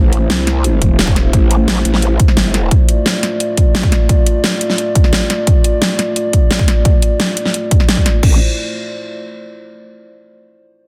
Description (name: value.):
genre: dark technical drum and bass.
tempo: 174 BPM.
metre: 4/4.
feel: straight.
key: A minor.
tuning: A4 = 444 Hz.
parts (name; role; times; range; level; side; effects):
dark analog pad; sustained chords; 0.0-8.4 s; A3 to D5; -23 LUFS; equal; chorus, sidechain pumping.
growl bass; bass; 0.0-2.7, 8.2-8.4 s; E1 to C2; -17 LUFS; equal; chorus, overdrive.
dubstep drum kit; drums; 0.1-8.3 s; crash cymbal, hi-hat, snare drum; -20 LUFS; equal; none.
electronic kick drum; drums; 0.8-8.3 s; none; -14 LUFS; equal; none.
room: light reverb.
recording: dense, heavily limited modern master.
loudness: -13 LUFS.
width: mono.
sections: 0.0-8.2 A section; 8.2-9.6 B section.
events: none.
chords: 0.0 Am; 2.7 Dm; 8.2 Am.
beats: 0.30 0.64 0.99 | 1.33 1.68 2.02 2.37 | 2.71 3.06 3.40 3.75 | 4.09 4.44 4.78 5.13 | 5.47 5.82 6.16 6.51 | 6.85 7.20 7.54 7.89 | 8.23.